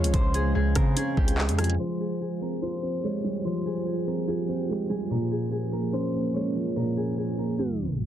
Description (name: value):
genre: hip hop, drill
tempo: 145 BPM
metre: 4/4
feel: half-time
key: F minor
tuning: A4 = 439 Hz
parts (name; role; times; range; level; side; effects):
- concert harp; melody; 0.0-8.1 s; F4 to Db5; -33 LUFS; left 2 dB; low-pass filter
- dark grand piano; accompaniment; 0.0-8.1 s; Bb2 to F4; -28 LUFS; right 1 dB; low-pass filter
- glassy FM pad; sustained chords; 0.0-8.1 s; F3 to C6; -33 LUFS; right 2 dB; ensemble chorus, built-in reverb
- distorted 808-style bass; bass; 0.0-1.8 s; Db2 to Db3; -25 LUFS; equal; distortion
- drill drum kit; drums; 0.0-1.8 s; handclaps, hi-hat, kick drum, rim click; -25 LUFS; equal; none
room: light reverb, digital ambience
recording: dense, heavily limited modern master, low-pass filter, tape stop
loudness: -24 LUFS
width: side -10 dB against mid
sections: 0.0-1.8 A section; 1.8-8.1 B section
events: tape stop 7.6-8.1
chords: 0.0 Dbmaj7; 1.8 Fmadd9; 5.1 Bbm7